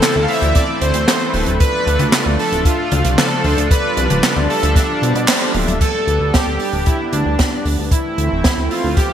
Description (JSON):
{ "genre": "synthwave", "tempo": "114 BPM", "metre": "4/4", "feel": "straight", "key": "D dorian", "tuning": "A4 = 439 Hz", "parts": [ { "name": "soft supersaw", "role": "melody", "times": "0.0-9.1 s", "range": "D4 to F5", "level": "-20 LUFS", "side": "right 1 dB", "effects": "digital delay" }, { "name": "lush unison pad", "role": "sustained chords", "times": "0.0-9.1 s", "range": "E3 to D4", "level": "-23 LUFS", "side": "equal", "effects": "chorus, sidechain pumping" }, { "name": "mellow synth brass", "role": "stabs", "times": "0.0-5.8 s", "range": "C4 to F5", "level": "-25 LUFS", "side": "left 4 dB", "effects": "chorus" }, { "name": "open jazz drum kit", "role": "drums", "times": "0.0-9.1 s", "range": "crash cymbal, handclaps, hi-hat, snare drum, toms", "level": "-19 LUFS", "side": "right 1 dB", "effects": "gated reverb" }, { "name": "chorused synth bass", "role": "bass", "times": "0.2-9.0 s", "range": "D1 to B2", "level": "-18 LUFS", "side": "equal", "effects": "sidechain pumping" }, { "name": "kick drum", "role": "drums", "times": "0.6-9.1 s", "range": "none", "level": "-16 LUFS", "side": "equal", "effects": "none" } ], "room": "moderate lush hall reverb, RT60 1.9 s, studio reverb", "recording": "bright 1980s-style digital production", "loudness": "-14 LUFS", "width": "side -9 dB against mid", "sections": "0.0-5.8 A section; 5.8-9.1 B section", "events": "band accent 5.3; drum fill 5.5", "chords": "0.0 Am/D; 1.6 Dm; 5.8 G/D; 7.9 Am/D" }